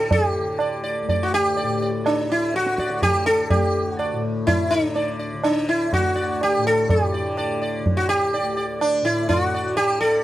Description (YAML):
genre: indian classical, Hindustani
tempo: 124 BPM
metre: 7/4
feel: straight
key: D major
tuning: A4 = 443 Hz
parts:
  - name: sitar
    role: melody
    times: 0.0-10.2 s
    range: D4 to D5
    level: -20 LUFS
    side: equal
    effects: none
  - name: tanpura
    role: drone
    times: 0.0-10.2 s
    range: D2 to D3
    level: -29 LUFS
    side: left 3 dB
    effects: none
  - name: tabla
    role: percussion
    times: 0.1-9.9 s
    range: none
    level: -24 LUFS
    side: right 2 dB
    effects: none
room: studio reverb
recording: dry, close 1970s-style studio recording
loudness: -19 LUFS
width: side -14 dB against mid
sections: 0.0-10.2 A section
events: none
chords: none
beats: | 0.11 0.60 1.09 1.57 2.06 2.54 3.03 | 3.51 4.00 4.48 4.96 5.45 5.93 6.41 | 6.89 7.37 7.85 8.34 8.81 9.29 9.77